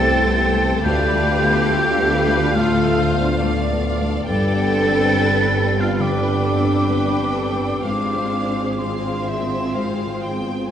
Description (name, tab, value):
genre	cinematic, emotional film score for orchestra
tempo	62-70 BPM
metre	4/4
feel	rubato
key	unclear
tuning	A4 = 440 Hz
part	rich symphonic violin section	melody	0.0-10.7 s	E5 to G5	-28 LUFS	left 1 dB	none
part	mellow hollow silver concert flute	second line	0.0-10.7 s	C6 to A6	-23 LUFS	equal	none
part	rich chamber violin section	second line	0.0-10.7 s	A3 to C5	-27 LUFS	left 2 dB	none
part	dark concert grand piano	accompaniment	0.0-10.7 s	D2 to D4	-25 LUFS	left 1 dB	none
part	rich symphonic viola section	accompaniment	0.0-10.7 s	C4 to D5	-30 LUFS	right 1 dB	none
part	mellow French horn section	sustained chords	0.0-10.7 s	A3 to B4	-25 LUFS	left 3 dB	none
part	clear symphonic cello section	bass	0.0-10.7 s	C4 to A4	-25 LUFS	right 2 dB	none
part	clear symphonic double bass section	bass	0.0-10.7 s	G1 to D2	-23 LUFS	right 2 dB	none
room	wet scoring stage reverb, RT60 1.9 s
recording	heard from further back in the room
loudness	-16 LUFS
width	side -9 dB against mid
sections	0.0-10.7 A section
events	none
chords	0.0 C6; 0.8 Dm; 4.3 Gadd9; 7.8 Fm/Ab